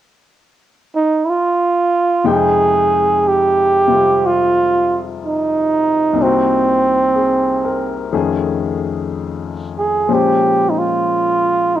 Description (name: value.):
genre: jazz.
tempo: 61 BPM.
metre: 4/4.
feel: swing 66% on 8ths.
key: F minor.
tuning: A4 = 440 Hz.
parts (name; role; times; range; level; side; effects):
breathy flugelhorn; melody; 1.0-11.8 s; C4 to G#4; -13 LUFS; right 2 dB; none.
clear baby grand piano; accompaniment; 2.2-11.8 s; C2 to G5; -20 LUFS; left 7 dB; cassette tape.
room: moderate spring reverb, RT60 1.2 s, small room ambience.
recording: home recording on cassette.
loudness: -13 LUFS.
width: side -12 dB against mid.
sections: 0.0-2.2 A section; 2.2-11.8 B section.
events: none.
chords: 0.0 N.C.; 2.2 Fm9; 6.2 Cm7b5; 8.1 F7alt; 10.1 Bbm9.